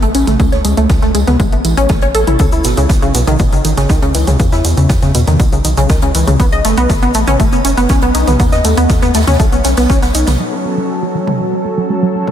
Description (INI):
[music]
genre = melodic techno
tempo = 120 BPM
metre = 4/4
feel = straight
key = F# dorian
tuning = A4 = 439 Hz
[part]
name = tight sequenced synth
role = arpeggios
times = 0.0-12.3 s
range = B2 to D#5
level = -14 LUFS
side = equal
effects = chorus, sidechain pumping, ping-pong delay
[part]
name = round analog bass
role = bass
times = 0.0-10.4 s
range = F#1 to E2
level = -15 LUFS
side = equal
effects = sidechain pumping
[part]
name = punchy analog drum machine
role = drums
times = 0.0-12.3 s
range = hi-hat, toms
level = -22 LUFS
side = right 1 dB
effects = overdrive, sidechain pumping on hats, sidechain pumping on toms
[part]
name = swinging big-band drum kit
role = drums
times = 0.0-10.4 s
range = hi-hat, snare drum, tambourine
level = -29 LUFS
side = right 2 dB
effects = sidechain pumping on hats, high-pass filter on hats, high-pass filter on snare, sidechain pumping on perc, high-pass filter on perc, high-pass filter on room
[part]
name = electronic kick drum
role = drums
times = 0.4-10.0 s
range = none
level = -13 LUFS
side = equal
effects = overdrive
[part]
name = egg shaker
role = percussion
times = 2.4-10.4 s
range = none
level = -26 LUFS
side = right 2 dB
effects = none
[part]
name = lush unison pad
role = sustained chords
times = 10.4-12.3 s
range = F#3 to A4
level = -16 LUFS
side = equal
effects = chorus, sidechain pumping
[sound]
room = light reverb, studio ambience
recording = none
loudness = -10 LUFS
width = side -10 dB against mid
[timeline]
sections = 0.0-10.4 A section; 10.4-12.3 B section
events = none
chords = 0.0 A; 2.4 C#m; 6.4 B; 10.4 F#m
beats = | 0.40 0.90 1.40 1.90 | 2.40 2.90 3.40 3.90 | 4.40 4.90 5.40 5.90 | 6.40 6.90 7.40 7.90 | 8.40 8.90 9.40 9.90 | 10.40 10.90 11.40 11.90